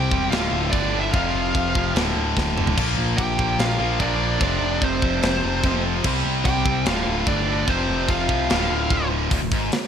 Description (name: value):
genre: heavy metal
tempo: 147 BPM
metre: 4/4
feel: straight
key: D minor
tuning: A4 = 440 Hz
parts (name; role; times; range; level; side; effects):
- high-gain lead guitar; melody; 0.0-9.1 s; C5 to G5; -26 LUFS; right 1 dB; distortion, digital delay
- high-gain lead guitar; second line; 0.0-9.1 s; C4 to G4; -31 LUFS; right 4 dB; distortion, digital delay
- distorted electric guitar; riff; 0.0-9.8 s; D2 to C4; -25 LUFS; left 10 dB; overdrive
- high-gain distorted guitar; riff; 0.0-9.8 s; D2 to C4; -27 LUFS; right 12 dB; distortion
- growling picked electric bass; bass; 0.0-9.8 s; D1 to C2; -26 LUFS; equal; overdrive
- tight metal drum kit; drums; 0.1-9.8 s; china cymbal, crash cymbal, hi-hat, kick drum, snare drum, toms; -25 LUFS; equal; gated reverb
room: moderate lush hall reverb, RT60 2.2 s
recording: bright 1980s-style digital production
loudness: -19 LUFS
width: side -8 dB against mid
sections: 0.0-9.3 A section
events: half time 0.0-9.3; drum fill 2.4-2.8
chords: 0.3 Dm; 1.1 F5; 2.0 D5; 2.8 Bb; 4.4 F5; 6.0 C5; 6.9 Dm; 7.7 F5; 8.5 Dm; 9.3 N.C.